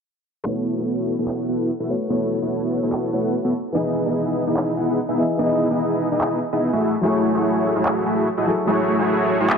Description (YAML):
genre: future bass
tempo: 146 BPM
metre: 4/4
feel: swing 54% on 16ths, half-time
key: unclear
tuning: A4 = 441 Hz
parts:
  - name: dark grand piano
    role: accompaniment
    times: 0.4-9.6 s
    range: E3 to D#5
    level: -25 LUFS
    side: left 2 dB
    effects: tape echo
  - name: dense compressed supersaw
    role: riff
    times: 0.5-9.6 s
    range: A3 to F#5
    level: -20 LUFS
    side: equal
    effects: low-pass filter, tape echo
  - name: electronic handclaps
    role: drums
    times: 1.3-9.6 s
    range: none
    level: -25 LUFS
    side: equal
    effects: none
room: light reverb, small room ambience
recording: low-pass filter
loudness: -19 LUFS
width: side -6 dB against mid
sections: 0.5-9.6 A section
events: filter sweep on supersaw synth 0.5-9.6; filter sweep 0.5-9.6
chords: 0.5 A69; 3.5 Emaj7; 6.8 F#m9